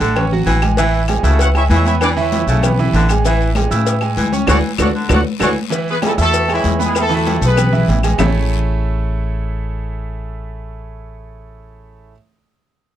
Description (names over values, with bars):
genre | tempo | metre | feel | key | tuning
latin, salsa | 194 BPM | 4/4 | straight | A major | A4 = 440 Hz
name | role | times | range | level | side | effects
clear baritone saxophone | second line | 0.0-5.6 s | C#3 to E3 | -21 LUFS | left 1 dB | none
bright concert grand piano | accompaniment | 0.0-12.1 s | E3 to E6 | -21 LUFS | right 7 dB | none
upright bass | bass | 0.0-12.1 s | A1 to A2 | -17 LUFS | equal | none
guiro | percussion | 0.0-8.3 s | none | -34 LUFS | left 23 dB | none
agogo bells and timbales | percussion | 0.2-8.3 s | none | -26 LUFS | right 7 dB | none
claves | percussion | 0.2-8.3 s | none | -26 LUFS | left 11 dB | none
congas | percussion | 0.2-8.3 s | none | -22 LUFS | left 3 dB | none
cowbell and bongos | percussion | 0.2-8.3 s | none | -25 LUFS | left 6 dB | none
maracas | percussion | 0.8-8.3 s | none | -30 LUFS | left 24 dB | none
dark horn section | melody | 1.3-7.9 s | E3 to F#5 | -18 LUFS | left 1 dB | none
room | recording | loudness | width
little or no reverb | dry, close 1970s-style studio recording | -13 LUFS | side -11 dB against mid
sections
0.0-5.7 A section; 5.7-8.2 B section; 8.2-10.7 C section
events
band accent 4.5-5.7; drum fill 5.0-5.7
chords
0.0 Dmaj7; 0.8 Amaj7; 2.0 Esus4; 3.2 Amaj7; 4.5 D; 5.7 Amaj7; 7.0 Esus4; 8.2 Amaj7